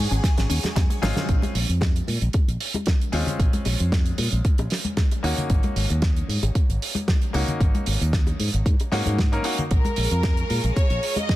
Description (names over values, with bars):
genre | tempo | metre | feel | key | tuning
nu-disco, nu disco | 114 BPM | 4/4 | swing 54% on 16ths | Bb minor | A4 = 440 Hz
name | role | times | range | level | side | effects
rich studio violin section | melody | 0.0-0.7, 9.7-11.4 s | Ab4 to Eb5 | -29 LUFS | equal | analog delay
bright grand piano | accompaniment | 0.0-9.6 s | Ab3 to Bb4 | -31 LUFS | left 2 dB | sidechain pumping, slapback echo
string machine, full ensemble | sustained chords | 0.0-1.3, 9.7-11.4 s | Ab4 to Db6 | -35 LUFS | right 2 dB | ensemble chorus, sidechain pumping
wide unison pluck | arpeggios | 0.0-1.2 s | Ab3 to Eb4 | -34 LUFS | left 4 dB | sidechain pumping, analog delay
fingered electric bass with an envelope filter | bass | 0.0-11.0 s | Ab1 to Bb2 | -24 LUFS | equal | sidechain pumping
damped 70s drum kit | drums | 0.1-11.4 s | cabasa, hi-hat, snare drum | -28 LUFS | right 2 dB | studio reverb
electronic kick drum | drums | 0.2-11.4 s | none | -21 LUFS | equal | studio reverb
bongos and congas | percussion | 0.4-11.3 s | none | -32 LUFS | left 2 dB | none
room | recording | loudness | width
little or no reverb | dense, heavily limited modern master | -20 LUFS | side -16 dB against mid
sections
0.0-1.3 A section; 1.3-11.4 B section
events
drop 0.0-1.3; drum fill 0.2-1.3; band accent 1.2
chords
0.0 Ab9sus4; 1.3 Bbm7; 5.5 Ab9sus4; 9.7 Bbm7